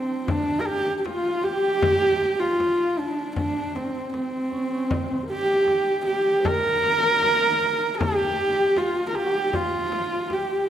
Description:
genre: mongolian traditional, Mongolian folk.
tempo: 78 BPM.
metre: 4/4.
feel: straight.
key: unclear.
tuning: A4 = 440 Hz.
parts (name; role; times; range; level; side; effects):
dark horsehead fiddle; melody; 0.0-10.7 s; C4 to Bb4; -22 LUFS; right 2 dB; none.
breathy low xiao; second line; 0.0-10.7 s; C4 to C5; -28 LUFS; left 2 dB; none.
frame drum; percussion; 0.3-10.5 s; none; -30 LUFS; left 3 dB; none.
room: wet recital hall reverb, RT60 1.4 s.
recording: none.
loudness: -21 LUFS.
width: side -10 dB against mid.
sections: 0.0-10.7 A section.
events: none.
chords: none.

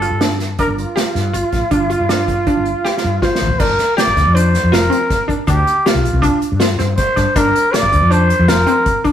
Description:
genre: progressive instrumental, band music in an uneven meter.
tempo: 160 BPM.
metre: 5/4.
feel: straight.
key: G minor.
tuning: A4 = 439 Hz.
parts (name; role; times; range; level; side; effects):
growling trumpet; melody; 0.0-9.0 s; F4 to D5; -16 LUFS; equal; none.
glassy wavetable pluck; arpeggios; 0.0-9.1 s; C4 to G4; -20 LUFS; equal; chorus.
woody fretless electric bass; bass; 0.0-8.6 s; F1 to G2; -17 LUFS; left 1 dB; none.
unplugged drum kit; drums; 0.0-9.1 s; crash cymbal, hi-hat, kick drum, snare drum, toms; -20 LUFS; equal; none.
tube shaker; percussion; 3.6-8.5 s; none; -41 LUFS; left 5 dB; none.
room: wet stone room reverb, RT60 1.1 s.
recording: rough rehearsal-room recording, warm saturation.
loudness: -12 LUFS.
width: side -10 dB against mid.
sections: 0.0-3.6 A section; 3.6-9.1 B section.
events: drum fill 2.8-3.6.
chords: 0.0 Dm/G; 3.6 Gm7.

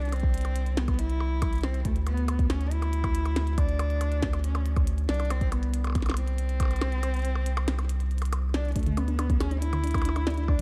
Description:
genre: IDM.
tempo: 139 BPM.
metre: 4/4.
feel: straight.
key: unclear.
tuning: A4 = 439 Hz.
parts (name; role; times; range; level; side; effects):
warm cello; melody; 0.0-10.6 s; A3 to E4; -36 LUFS; equal; delay.
round analog bass; bass; 0.0-10.6 s; C2 to D2; -30 LUFS; equal; none.
glitchy drum kit; drums; 0.0-10.6 s; hi-hat, percussion blips, snare drum; -37 LUFS; equal; none.
electronic kick drum; drums; 0.2-10.6 s; none; -30 LUFS; equal; none.
soft round pluck; arpeggios; 8.8-10.6 s; D3 to D5; -37 LUFS; equal; chorus.
room: little or no reverb.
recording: dark, warm production.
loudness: -27 LUFS.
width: mono.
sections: 0.0-10.6 A section.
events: kick drops out 7.0-8.8.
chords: 0.0 C; 1.9 Dsus2; 5.1 N.C.; 8.8 Dsus2.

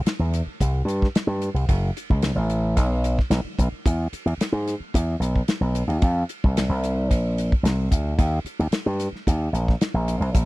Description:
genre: electric jazz fusion.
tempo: 111 BPM.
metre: 4/4.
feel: swing 53% on 16ths.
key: unclear.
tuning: A4 = 440 Hz.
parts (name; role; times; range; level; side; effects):
slap bass with an envelope filter; bass; 0.0-10.5 s; F#1 to G#2; -22 LUFS; equal; none.
damped 70s drum kit; drums; 0.1-10.5 s; hi-hat, kick drum, ride cymbal, snare drum; -25 LUFS; equal; none.
room: little or no reverb.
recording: dry, close 1970s-style studio recording.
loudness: -20 LUFS.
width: side -20 dB against mid.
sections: 0.0-10.5 A section.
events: none.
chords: none.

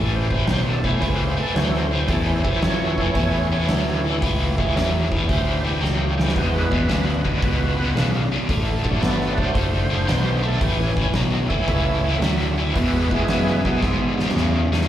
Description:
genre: blues rock power trio and southern rock.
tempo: 112 BPM.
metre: 4/4.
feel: swing 67% on 8ths.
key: A major.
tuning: A4 = 440 Hz.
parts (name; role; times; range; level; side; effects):
overdriven tonewheel organ; sustained chords; 0.0-14.2 s; E3 to E5; -26 LUFS; right 2 dB; chorus vibrato, slow rotary speaker.
biting overdriven guitar; riff; 0.0-14.9 s; E2 to B3; -24 LUFS; left 1 dB; harmonic tremolo.
fuzz picked electric bass; bass; 0.0-14.9 s; F#1 to G#2; -23 LUFS; equal; overdrive.
oversized low-tuned drum kit; drums; 0.3-14.9 s; hi-hat, kick drum, snare drum; -24 LUFS; equal; none.
room: light reverb, studio reverb.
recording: live gig heard through the venue's PA, club reverb.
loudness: -18 LUFS.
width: side -11 dB against mid.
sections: 0.0-14.9 A section.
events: tonewheel organ solo 0.0-14.9; drum fill 5.8-6.4, 13.8-14.9.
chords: 0.0 A; 6.4 E; 8.5 D; 10.6 A; 12.8 E.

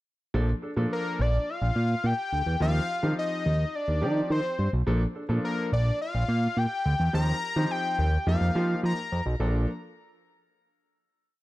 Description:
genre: early-eighties boogie funk.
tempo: 106 BPM.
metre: 4/4.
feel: straight.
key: Bb major.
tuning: A4 = 440 Hz.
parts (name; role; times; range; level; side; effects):
clear baby grand piano; accompaniment; 0.3-9.7 s; F3 to A4; -32 LUFS; equal; none.
fat analog bass; bass; 0.3-9.7 s; Bb1 to F3; -25 LUFS; equal; none.
fat analog lead; melody; 0.9-9.2 s; Bb4 to Bb5; -30 LUFS; left 2 dB; chorus, plate reverb, tape echo.
room: light reverb, small room ambience.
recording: dark, warm production.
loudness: -24 LUFS.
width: side -17 dB against mid.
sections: 0.3-9.4 verse; 9.4-11.4 final chord.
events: none.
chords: 0.3 Bbmaj7; 2.6 Eb69; 4.9 Bbmaj7; 7.1 Eb69; 8.3 F9sus4; 9.4 Bbmaj7.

